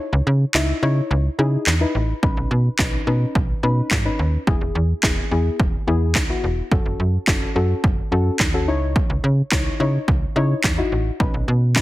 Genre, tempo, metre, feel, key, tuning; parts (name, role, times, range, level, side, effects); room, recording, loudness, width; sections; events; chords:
dance-pop; 107 BPM; 4/4; straight; A4 = 437 Hz
deep mellow chord stab; accompaniment; 0.0-11.8 s; B3 to E5; -25 LUFS; left 3 dB; chorus, sidechain pumping
slap-like FM bass; bass; 0.1-11.8 s; E1 to C#3; -20 LUFS; equal; sidechain pumping
house drum kit; drums; 0.5-11.8 s; handclaps, kick drum, snare drum; -20 LUFS; equal; overdrive
light reverb; heavily compressed radio sound; -17 LUFS; side -17 dB against mid
0.0-11.8 A section
0.0 C#madd9; 2.2 Badd9; 4.5 E; 6.7 F#m; 8.7 C#madd9; 11.2 Badd9